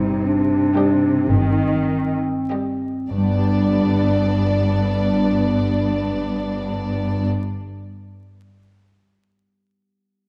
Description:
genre	classical, slow romantic movement for symphony orchestra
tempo	30-43 BPM (dotted quarters)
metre	6/8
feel	rubato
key	G major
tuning	A4 = 441 Hz
part	mellow clarinet	second line	0.0-7.3 s	G3 to Eb4	-25 LUFS	equal	none
part	concert harp	arpeggios	0.0-7.9 s	G2 to D5	-29 LUFS	equal	none
part	rich chamber cello section	bass	0.0-7.3 s	G2 to Eb3	-26 LUFS	equal	none
part	warm symphonic double bass section	bass	0.0-7.3 s	G1	-28 LUFS	equal	none
part	rich chamber violin section	second line	0.7-7.3 s	D4 to G4	-29 LUFS	equal	none
part	rich chamber violin section	melody	0.8-7.3 s	D5 to Eb5	-33 LUFS	equal	none
part	rich chamber viola section	accompaniment	0.8-7.3 s	G3 to B3	-29 LUFS	equal	none
room	moderate scoring stage reverb, RT60 2.0 s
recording	vinyl crackle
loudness	-20 LUFS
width	mono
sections	0.0-3.1 A section; 3.1-6.5 B section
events	slowing down 0.0-3.1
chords	0.0 Cm/G; 3.1 G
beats	1.28 | 3.11 4.81

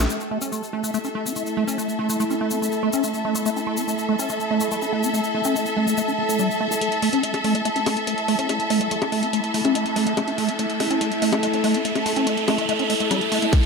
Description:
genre	psychedelic trance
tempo	143 BPM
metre	4/4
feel	straight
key	A major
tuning	A4 = 435 Hz
part	resonant blip pluck	second line	0.0-0.1, 4.6-6.8 s	A3	-34 LUFS	right 5 dB	none
part	evolving wavetable pad	sustained chords	0.0-13.7 s	A3 to G4	-27 LUFS	equal	phaser, built-in reverb, sidechain pumping
part	liquid acid bass	riff	0.0-13.6 s	G3 to C#4	-24 LUFS	moving between left 3 dB and right 4 dB	phaser, auto-pan, sidechain pumping, tape echo
part	drum and bass drum kit	drums	0.0-0.1, 6.8-13.7 s	bongos, hi-hat, snare drum	-27 LUFS	left 3 dB	none
part	egg shaker	percussion	0.0-6.8 s	none	-31 LUFS	left 3 dB	none
part	bright symphonic string section	texture	0.1-13.7 s	A4 to A5	-26 LUFS	left 1 dB	sidechain pumping
part	riser	sound effects	8.1-13.7 s	none	-30 LUFS	right 5 dB	none
part	electronic kick drum	drums	13.5-13.6 s	none	-15 LUFS	equal	none
room	wet digital room reverb, RT60 1.0 s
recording	none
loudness	-20 LUFS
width	side -4 dB against mid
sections	0.1-6.8 A section; 6.8-13.7 B section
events	band accent 0.0; filter sweep on ambient pad 0.1-6.8, 6.8-13.7; build-up 6.8-13.7; filter sweep on acid bass 6.8-13.7; riser 8.1-13.7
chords	0.1 A5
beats	| 0.10 0.52 0.94 1.36 | 1.78 2.20 2.62 3.04 | 3.46 3.88 4.30 4.72 | 5.14 5.56 5.98 6.39 | 6.82 7.23 7.65 8.07 | 8.49 8.91 9.33 9.75 | 10.17 10.59 11.01 11.43 | 11.85 12.27 12.69 13.11 | 13.53

